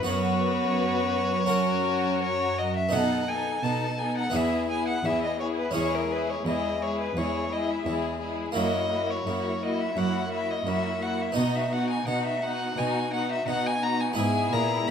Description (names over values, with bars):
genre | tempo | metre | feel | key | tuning
classical, baroque-style concerto movement with solo episodes | 85 BPM | 4/4 | straight | B major | A4 = 439 Hz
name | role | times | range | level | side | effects
rich chamber violin section | melody | 0.0-14.9 s | F#4 to B4 | -35 LUFS | left 6 dB | none
rich violin | melody | 0.0-14.9 s | A#4 to A#5 | -29 LUFS | left 2 dB | none
warm symphonic violin section | second line | 0.0-14.9 s | D#4 to F#4 | -32 LUFS | left 4 dB | none
harpsichord | accompaniment | 0.0-14.9 s | E2 to B4 | -32 LUFS | right 1 dB | none
rich chamber viola section | accompaniment | 0.0-14.9 s | G#3 to C#4 | -33 LUFS | right 1 dB | none
warm symphonic cello section | bass | 0.0-14.9 s | E2 to B2 | -32 LUFS | right 4 dB | none
room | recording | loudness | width
moderate recital hall reverb, RT60 1.7 s | close, detailed microphones | -24 LUFS | side -7 dB against mid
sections
0.0-2.9 A section; 2.9-14.9 A section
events
none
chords
0.1 F#sus4; 1.5 F#; 2.9 B7; 4.3 E; 5.8 C#m/E; 8.6 F#7; 11.4 B; 14.2 E/G#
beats
| 0.08 0.80 1.51 2.22 | 2.94 3.64 4.35 5.05 | 5.76 6.46 7.17 7.87 | 8.57 9.27 9.97 10.67 | 11.37 12.07 12.78 13.48 | 14.18 14.88